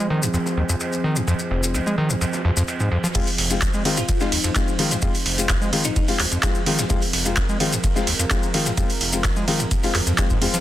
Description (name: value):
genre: acid house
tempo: 128 BPM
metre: 4/4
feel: straight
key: F minor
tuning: A4 = 437 Hz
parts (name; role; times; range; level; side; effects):
- warm analog pad; sustained chords; 0.0-10.6 s; F3 to C5; -29 LUFS; right 2 dB; chorus, sidechain pumping
- overdriven acid bass; riff; 0.0-10.6 s; F1 to Ab3; -24 LUFS; equal; sidechain pumping, tape echo
- dark baby grand piano; stabs; 0.0-10.6 s; Ab3 to F4; -27 LUFS; left 4 dB; low-pass filter, tape echo
- breakbeat sampler-style drum kit; drums; 0.1-10.6 s; ride cymbal, snare drum; -32 LUFS; right 3 dB; overdrive, high-pass filter on cymbals, low-pass filter on cymbals, high-pass filter on snare, low-pass filter on snare, high-pass filter on room, low-pass filter on room
- maracas; percussion; 0.2-10.6 s; none; -28 LUFS; left 2 dB; none
- electro analog drum machine; drums; 3.1-10.6 s; crash cymbal, handclaps, hi-hat; -24 LUFS; right 1 dB; none
- electronic kick drum; drums; 3.1-10.4 s; none; -23 LUFS; equal; none
- bell-like FM electric piano; melody; 4.0-6.0 s; Eb4 to F4; -31 LUFS; left 5 dB; chorus, digital delay
room: little or no reverb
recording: dense, heavily limited modern master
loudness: -18 LUFS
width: side -13 dB against mid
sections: 0.0-3.1 A section; 3.1-10.6 B section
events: drop 3.1-10.6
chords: 0.0 Fm